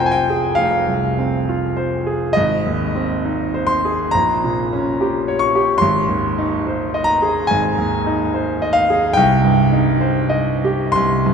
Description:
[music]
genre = classical, romantic nocturne for solo piano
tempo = 59-74 BPM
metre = 4/4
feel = rubato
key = unclear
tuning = A4 = 440 Hz
[part]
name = clear concert grand piano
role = solo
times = 0.0-11.3 s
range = F1 to Db6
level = -15 LUFS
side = equal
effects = none
[sound]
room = wet cathedral reverb, RT60 6.0 s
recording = in a vast, echoing space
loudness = -15 LUFS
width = side -6 dB against mid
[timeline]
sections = 0.0-11.3 A section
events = none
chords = 0.0 Fm; 2.4 Ab; 4.1 Gdim/Bb; 5.8 Ab; 9.2 Cm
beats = 0.59 1.48 | 2.36 3.25 4.15 5.00 | 5.81 6.66 7.50 8.35 | 9.18 10.00 10.96

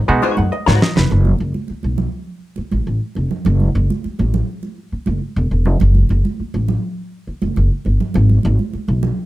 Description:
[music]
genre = funk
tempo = 102 BPM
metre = 4/4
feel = straight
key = F# dorian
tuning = A4 = 440 Hz
[part]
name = upright bass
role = bass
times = 0.0-9.1 s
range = E1 to B2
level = -15 LUFS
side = equal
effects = none
[part]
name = vintage hollow-body jazz guitar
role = accompaniment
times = 0.1-1.0 s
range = D#4 to C#5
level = -21 LUFS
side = left 6 dB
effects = wah
[part]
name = clav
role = stabs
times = 0.1-1.2 s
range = G#3 to G#5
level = -20 LUFS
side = right 3 dB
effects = none
[part]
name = congas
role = percussion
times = 0.2-9.2 s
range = none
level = -24 LUFS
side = right 4 dB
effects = none
[part]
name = snare drum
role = drums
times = 0.7-1.1 s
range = none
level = -17 LUFS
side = left 1 dB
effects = none
[sound]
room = light reverb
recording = none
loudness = -15 LUFS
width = side -16 dB against mid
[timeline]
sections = 0.0-1.1 A section; 1.1-9.3 B section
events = drum fill 0.0-1.1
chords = 0.0 G#m7; 1.1 F#m; 8.2 G#m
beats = 0.53 | 1.11 1.70 2.28 2.87 | 3.46 4.04 4.63 5.22 | 5.80 6.39 6.98 7.57 | 8.15 8.74

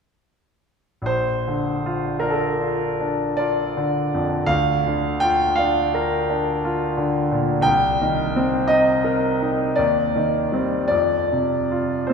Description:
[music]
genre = classical, romantic nocturne for solo piano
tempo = 49-60 BPM (dotted quarters)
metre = 9/8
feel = rubato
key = Bb major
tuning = A4 = 440 Hz
[part]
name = bright concert grand piano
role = solo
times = 1.0-12.1 s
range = Bb1 to G5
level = -18 LUFS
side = equal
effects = none
[sound]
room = wet church reverb, RT60 3.4 s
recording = recorded in a church or concert hall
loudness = -18 LUFS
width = side -5 dB against mid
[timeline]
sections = 1.1-12.1 A section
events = none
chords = 1.1 Bb; 4.5 Bb/D; 7.7 Cm7; 9.8 Cm/Eb; 10.9 F5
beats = | 1.08 2.23 3.39 | 4.50 5.58 6.64 | 7.66 8.71 9.79 | 10.92 12.11

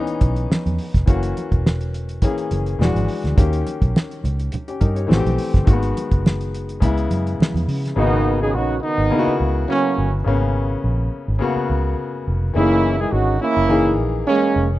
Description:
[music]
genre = lush 1970s-style soul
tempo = 105 BPM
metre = 4/4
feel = swing 54% on 16ths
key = unclear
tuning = A4 = 435 Hz
[part]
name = clear baby grand piano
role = accompaniment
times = 0.0-14.8 s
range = C#3 to C#5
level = -23 LUFS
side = left 4 dB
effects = none
[part]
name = cloth-damped thuddy drum kit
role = drums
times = 0.1-8.0 s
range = hi-hat, kick drum, snare drum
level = -16 LUFS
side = equal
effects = none
[part]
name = vintage muted fingered electric bass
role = bass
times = 0.2-14.8 s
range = E1 to C#3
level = -21 LUFS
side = equal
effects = none
[part]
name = congas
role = percussion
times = 0.2-7.7 s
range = none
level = -28 LUFS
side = right 3 dB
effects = none
[part]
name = warm horn section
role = stabs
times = 8.0-14.7 s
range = D#3 to G#4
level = -18 LUFS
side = right 2 dB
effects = none
[sound]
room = small room ambience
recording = rough home demo mix, nothing above 10.4 kHz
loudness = -17 LUFS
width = side -16 dB against mid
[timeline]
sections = 0.0-8.0 A section; 8.0-14.8 B section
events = none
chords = 0.0 C#m7; 1.1 F#7; 2.8 E9; 3.4 D#7; 5.1 Am7; 5.7 G#m7; 6.8 C#m7; 8.0 G#m11; 12.6 F#13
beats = 0.50 | 1.07 1.65 2.23 2.80 | 3.38 3.95 4.53 5.10 | 5.67 6.25 6.82 7.40 | 7.97 8.54 9.12 9.69 | 10.26 10.84 11.41 11.98 | 12.56 13.13 13.70 14.28

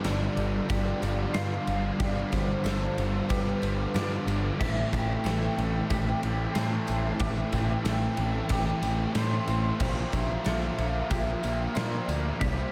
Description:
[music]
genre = rock, shoegaze and dream pop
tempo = 92 BPM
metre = 4/4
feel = straight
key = unclear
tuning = A4 = 444 Hz
[part]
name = warm velvety synth lead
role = melody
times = 0.0-12.7 s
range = B4 to C6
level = -38 LUFS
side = equal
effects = chorus, tape echo
[part]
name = twangy electric guitar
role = arpeggios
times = 0.0-12.7 s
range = G4 to C6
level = -42 LUFS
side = equal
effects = ensemble chorus, tape echo
[part]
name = biting overdriven guitar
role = riff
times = 0.0-12.7 s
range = G2 to F4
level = -39 LUFS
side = equal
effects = reverse reverb
[part]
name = raw garage guitar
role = riff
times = 0.0-12.7 s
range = G2 to C4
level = -40 LUFS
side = equal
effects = overdrive, phaser
[part]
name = thick fuzz guitar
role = riff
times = 0.0-12.7 s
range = G2 to C4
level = -34 LUFS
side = equal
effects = distortion, subtle chorus
[part]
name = growling picked electric bass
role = bass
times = 0.0-12.6 s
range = G1 to Bb2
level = -33 LUFS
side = equal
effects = overdrive
[part]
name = gated 80s drum kit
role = drums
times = 0.0-12.6 s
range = crash cymbal, kick drum, ride cymbal, snare drum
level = -36 LUFS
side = equal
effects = none
[part]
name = tambourine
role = percussion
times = 0.1-12.5 s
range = none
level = -54 LUFS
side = equal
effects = none
[sound]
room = wet huge ambient reverb, RT60 7.3 s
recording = dreamy mix soaked in reverb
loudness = -28 LUFS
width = mono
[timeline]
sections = 0.0-12.7 A section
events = none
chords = 0.0 G7sus4; 4.6 Am7; 9.8 Bb69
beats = 0.05 0.70 1.35 | 2.00 2.65 3.30 3.95 | 4.60 5.25 5.90 6.55 | 7.21 7.86 8.51 9.16 | 9.81 10.46 11.11 11.76 | 12.41

